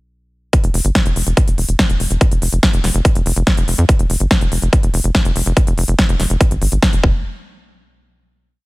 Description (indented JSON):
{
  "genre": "psychedelic trance",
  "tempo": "143 BPM",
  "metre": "4/4",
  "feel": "straight",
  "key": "F minor",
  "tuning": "A4 = 440 Hz",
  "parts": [
    { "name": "big-room dance drum kit", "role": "drums", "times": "0.5-7.0 s", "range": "hi-hat, snare drum", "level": "-20 LUFS", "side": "equal", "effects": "overdrive, studio reverb" },
    { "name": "electronic kick drum", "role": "drums", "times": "0.5-7.1 s", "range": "none", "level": "-15 LUFS", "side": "equal", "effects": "studio reverb" },
    { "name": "tight sequencer bass", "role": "bass", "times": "0.6-7.2 s", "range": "F1 to F2", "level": "-16 LUFS", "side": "equal", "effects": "none" }
  ],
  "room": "digital ambience",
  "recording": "faint mains hum",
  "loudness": "-13 LUFS",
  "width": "side -22 dB against mid",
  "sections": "0.5-7.2 groove; 7.2-8.7 final hit",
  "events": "none",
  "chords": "none",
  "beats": "| 0.53 0.95 1.37 1.79 | 2.21 2.63 3.05 3.47 | 3.89 4.31 4.73 5.15 | 5.57 5.99 6.41 6.83"
}